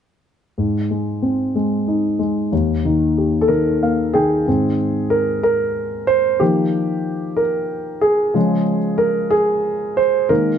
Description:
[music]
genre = pop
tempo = 62 BPM (dotted quarters)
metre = 6/8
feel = straight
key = Ab major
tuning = A4 = 440 Hz
[part]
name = warm concert grand piano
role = solo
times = 0.6-10.6 s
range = Eb2 to G5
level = -16 LUFS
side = equal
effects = none
[sound]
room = light reverb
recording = dark, warm production, nothing above 10.9 kHz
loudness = -16 LUFS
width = side -8 dB against mid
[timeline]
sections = 0.6-4.5 A section; 4.5-10.6 B section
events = grand piano fill 3.5-4.5; grand piano solo 4.5-10.6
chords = 0.6 Ab; 2.5 Eb; 4.5 Abadd9; 6.4 Ebadd9; 8.4 Db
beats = | 0.58 1.55 | 2.52 3.50 | 4.47 5.44 | 6.41 7.38 | 8.36 9.33 | 10.30

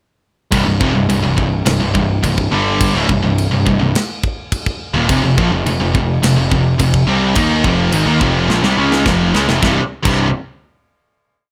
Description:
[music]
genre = heavy metal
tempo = 106 BPM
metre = 4/4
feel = straight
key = C phrygian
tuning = A4 = 440 Hz
[part]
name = scooped high-gain guitar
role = riff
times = 0.5-10.3 s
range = C2 to Eb4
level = -19 LUFS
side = equal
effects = distortion
[part]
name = sludgy distorted guitar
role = riff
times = 0.5-10.3 s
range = C2 to Eb4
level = -19 LUFS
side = equal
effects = overdrive
[part]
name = fuzz picked electric bass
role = bass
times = 0.5-10.3 s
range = C1 to Eb2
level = -22 LUFS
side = equal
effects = overdrive
[part]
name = tight metal drum kit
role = drums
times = 0.5-10.2 s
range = crash cymbal, kick drum, snare drum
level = -22 LUFS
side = equal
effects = none
[sound]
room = light reverb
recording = none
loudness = -15 LUFS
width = mono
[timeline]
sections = 0.5-9.6 riff; 9.6-11.5 final chord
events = drum fill 8.5-9.6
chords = 0.5 C5; 5.1 F5; 9.6 C5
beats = | 0.52 1.09 1.66 2.23 | 2.80 3.38 3.95 4.52 | 5.09 5.66 6.22 6.79 | 7.36 7.93 8.49 9.06 | 9.62 10.19

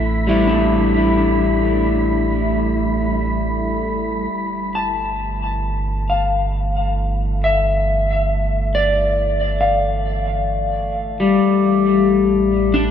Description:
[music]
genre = ambient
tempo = 67 BPM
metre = 4/4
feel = straight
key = unclear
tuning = A4 = 440 Hz
[part]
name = electric guitar at the edge of break-up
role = arpeggios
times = 0.0-12.9 s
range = G3 to A5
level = -18 LUFS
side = left 3 dB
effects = diffuse ambient delay
[part]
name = warm sub bass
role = bass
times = 0.0-12.9 s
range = G1 to A1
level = -22 LUFS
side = right 1 dB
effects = none
[part]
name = analog drone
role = drone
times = 0.0-12.9 s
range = E3 to E4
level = -27 LUFS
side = right 1 dB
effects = chorus
[part]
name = wind-like tuned noise texture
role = texture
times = 0.0-4.3 s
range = B5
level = -29 LUFS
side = right 1 dB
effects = built-in reverb
[sound]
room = wet cathedral reverb, RT60 6.9 s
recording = none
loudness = -16 LUFS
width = side -8 dB against mid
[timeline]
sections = 0.0-4.3 A section; 4.3-12.9 B section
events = fade-in on synth drone 4.3-12.9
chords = 0.0 E7sus4/A; 4.3 Gsus2; 11.4 A5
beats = | 0.71 1.61 2.51 3.42 | 4.33 5.23 6.13 7.03 | 7.92 8.80 9.68 10.56 | 11.44 12.32

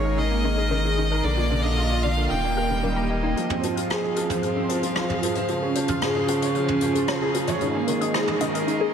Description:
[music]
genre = piano and strings electronica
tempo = 113 BPM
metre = 4/4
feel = straight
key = F minor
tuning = A4 = 441 Hz
[part]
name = clear violin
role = melody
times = 0.0-3.1 s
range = Db5 to G5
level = -29 LUFS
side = equal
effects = analog delay
[part]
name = warm string quartet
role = sustained chords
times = 0.0-8.9 s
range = Bb2 to F5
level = -28 LUFS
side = right 1 dB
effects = none
[part]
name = warbly dusty pluck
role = arpeggios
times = 0.0-8.9 s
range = D4 to F6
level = -32 LUFS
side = left 3 dB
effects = chorus, analog delay
[part]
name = clear upright piano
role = riff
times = 0.0-8.9 s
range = D3 to Db5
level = -25 LUFS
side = right 1 dB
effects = ensemble chorus, analog delay
[part]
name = round analog bass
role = bass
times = 0.0-8.9 s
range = Eb1 to Db2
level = -28 LUFS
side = equal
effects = high-pass filter
[part]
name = vintage brush drum kit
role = drums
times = 3.4-8.8 s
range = hi-hat, rim click, toms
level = -29 LUFS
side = equal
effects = low-pass filter on hats, low-pass filter on toms, low-pass filter on snare, low-pass filter on room
[sound]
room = wet cathedral reverb, RT60 5.5 s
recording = dreamy mix soaked in reverb, high-pass filter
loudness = -21 LUFS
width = side -8 dB against mid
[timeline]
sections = 0.0-3.4 A section; 3.4-8.9 B section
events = build-up 3.4-8.9; filter sweep on synth arpeggio sound 3.4-8.9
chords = 0.0 Absus2; 1.2 Bb; 2.3 Eb; 3.4 Fm; 5.5 Db; 7.6 Absus2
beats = 0.18 0.71 | 1.24 1.77 2.30 2.83 | 3.36 3.90 4.43 4.96 | 5.49 6.02 6.55 7.08 | 7.61 8.14 8.67

